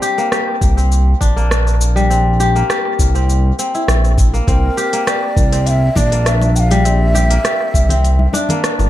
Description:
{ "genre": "organic downtempo", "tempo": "101 BPM", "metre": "4/4", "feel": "straight", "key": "C mixolydian", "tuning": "A4 = 440 Hz", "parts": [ { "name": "kora", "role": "arpeggios", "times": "0.0-8.9 s", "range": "G3 to G4", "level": "-18 LUFS", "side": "left 2 dB", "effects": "low-pass filter, analog delay" }, { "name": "organic electronic drum kit", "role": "drums", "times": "0.0-8.9 s", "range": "hi-hat, rim click, shaker", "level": "-21 LUFS", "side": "equal", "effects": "analog delay" }, { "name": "smooth synth bass", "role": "bass", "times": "0.6-8.9 s", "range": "G1 to C2", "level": "-13 LUFS", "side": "equal", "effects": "sidechain pumping" }, { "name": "electronic kick drum", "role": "drums", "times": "0.6-7.9 s", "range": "none", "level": "-16 LUFS", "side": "equal", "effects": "none" }, { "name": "breathy mellow ney", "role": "melody", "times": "4.5-8.6 s", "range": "Bb4 to G5", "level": "-20 LUFS", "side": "right 2 dB", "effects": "tape echo" }, { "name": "congas", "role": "percussion", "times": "6.0-8.9 s", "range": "none", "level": "-23 LUFS", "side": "left 2 dB", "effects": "none" } ], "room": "light reverb, digital ambience", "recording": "echo-heavy mix", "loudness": "-12 LUFS", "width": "side -14 dB against mid", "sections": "0.0-8.9 A section", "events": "none", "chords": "0.0 C7", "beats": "0.32 0.91 1.51 | 2.10 2.70 3.29 3.88 | 4.48 5.07 5.67 6.26 | 6.85 7.45 8.04 8.64" }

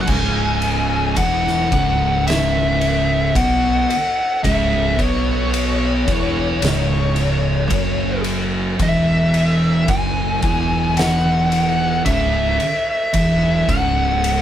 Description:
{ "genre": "stoner and doom metal", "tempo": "55 BPM", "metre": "4/4", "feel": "straight", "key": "C# minor", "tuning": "A4 = 441 Hz", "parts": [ { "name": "fuzz lead guitar", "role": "melody", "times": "0.0-14.4 s", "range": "C#5 to G#5", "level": "-20 LUFS", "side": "left 2 dB", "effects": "wah, distortion" }, { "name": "thick fuzz guitar", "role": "riff", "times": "0.0-14.4 s", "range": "C#2 to B3", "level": "-23 LUFS", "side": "left 7 dB", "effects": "distortion" }, { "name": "thick fuzz guitar", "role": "riff", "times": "0.0-14.4 s", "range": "C#2 to B3", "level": "-22 LUFS", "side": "right 6 dB", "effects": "distortion" }, { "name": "fuzz fingered electric bass", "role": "bass", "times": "0.0-14.4 s", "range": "C#1 to B1", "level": "-23 LUFS", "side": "equal", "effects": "overdrive" }, { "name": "oversized low-tuned drum kit", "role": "drums", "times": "0.1-14.4 s", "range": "crash cymbal, kick drum, ride cymbal, snare drum", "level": "-23 LUFS", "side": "equal", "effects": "none" } ], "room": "light reverb", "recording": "band playing live in one room", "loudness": "-15 LUFS", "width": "side -10 dB against mid", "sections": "0.1-14.4 A section", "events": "none", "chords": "0.1 C#m; 8.8 A6 (rootless)", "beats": "| 0.08 1.17 2.26 3.35 | 4.44 5.53 6.62 7.70 | 8.79 9.88 10.97 12.05 | 13.14 14.23" }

